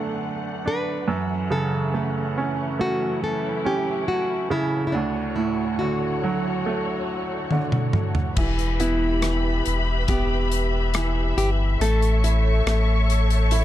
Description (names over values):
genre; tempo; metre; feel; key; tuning
pop ballad; 70 BPM; 4/4; straight; unclear; A4 = 439 Hz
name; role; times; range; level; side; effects
nylon-string guitar; melody; 0.0-13.6 s; D4 to B4; -28 LUFS; left 1 dB; digital delay
bright upright piano; accompaniment; 0.0-13.6 s; D2 to E4; -26 LUFS; right 4 dB; none
dark symphonic string section; sustained chords; 0.0-13.6 s; D3 to C#6; -29 LUFS; left 2 dB; none
modern studio drum kit; drums; 7.5-13.6 s; crash cymbal, hi-hat, kick drum, rim click, toms; -26 LUFS; left 1 dB; none
saturated sub bass; bass; 8.4-13.6 s; E1 to A1; -21 LUFS; left 1 dB; none
room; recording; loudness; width
light reverb, small room reverb; dark, warm production; -21 LUFS; side -13 dB against mid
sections
0.0-8.4 A section; 8.4-13.6 B section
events
drum fill 7.5-8.4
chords
0.0 Bm7; 1.1 F#m7; 4.9 Dmaj7; 8.4 Em; 11.8 A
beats
0.66 | 1.51 2.37 3.23 4.08 | 4.94 5.80 6.66 7.51 | 8.37 9.23 10.08 10.94 | 11.80 12.65 13.51